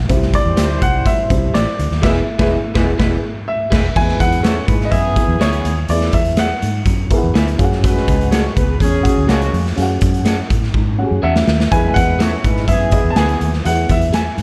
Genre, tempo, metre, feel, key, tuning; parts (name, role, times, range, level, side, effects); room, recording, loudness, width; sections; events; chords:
uptempo 1960s-style soul; 124 BPM; 4/4; straight; E mixolydian; A4 = 441 Hz
dark upright piano; accompaniment; 0.0-14.3 s; B3 to G#5; -25 LUFS; equal
vintage muted fingered electric bass; bass; 0.0-14.4 s; E1 to A2; -21 LUFS; equal
mellow horn section; second line; 0.1-13.5 s; C#3 to C#5; -25 LUFS; equal; slapback echo
raw garage drum kit; drums; 0.1-14.4 s; crash cymbal, hi-hat, kick drum, snare drum; -19 LUFS; equal
clear grand piano; melody; 0.3-7.1, 11.2-14.4 s; C#5 to A5; -23 LUFS; equal
electric guitar through a small old amp; stabs; 0.6-14.2 s; G4 to F#5; -29 LUFS; equal; subtle chorus, slapback echo
light reverb, small room ambience; dark, warm production; -16 LUFS; mono
0.0-4.0 A section; 4.0-14.4 B section
band accent 2.0-4.0; upright piano fill 6.9-7.8; drum fill 10.7-11.7
0.1 C; 2.0 E; 7.6 F#sus2; 11.7 E